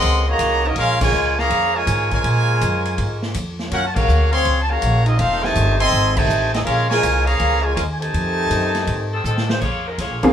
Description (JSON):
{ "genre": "jazz, big band swing", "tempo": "163 BPM", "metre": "4/4", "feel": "swing 66% on 8ths", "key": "Bb minor", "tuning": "A4 = 440 Hz", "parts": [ { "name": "bright trumpet section", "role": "melody", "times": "0.0-9.2 s", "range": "C4 to C6", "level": "-20 LUFS", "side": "right 1 dB", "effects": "none" }, { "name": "muted trombone section", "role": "second line", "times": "0.0-9.2 s", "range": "C3 to A4", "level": "-23 LUFS", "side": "left 1 dB", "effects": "none" }, { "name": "upright bass", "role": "bass", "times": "0.0-10.3 s", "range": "F1 to Bb2", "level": "-20 LUFS", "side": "equal", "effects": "none" }, { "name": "swinging big-band drum kit", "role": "drums", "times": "0.0-10.3 s", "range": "crash cymbal, hi-hat, kick drum, ride cymbal, snare drum", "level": "-27 LUFS", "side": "equal", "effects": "none" }, { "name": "bright saxophone section", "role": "melody", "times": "9.1-10.3 s", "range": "Eb3 to F5", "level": "-24 LUFS", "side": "left 2 dB", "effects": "none" }, { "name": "warm upright piano", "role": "accompaniment", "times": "10.2-10.3 s", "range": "Bb3 to Ab4", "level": "-11 LUFS", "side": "equal", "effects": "none" } ], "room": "moderate studio ambience, RT60 0.5 s", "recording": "band playing live in one room, faint mains hum", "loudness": "-16 LUFS", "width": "side -9 dB against mid", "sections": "0.0-9.6 A section", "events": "band accent 0.9, 3.9, 6.1, 10.2; drum fill 9.2-9.6", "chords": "0.0 Ebm7; 0.8 Bbm7; 3.7 Gbmaj7; 5.2 F7#9; 6.7 Bbm7; 8.1 F7#9; 9.6 Bbm7" }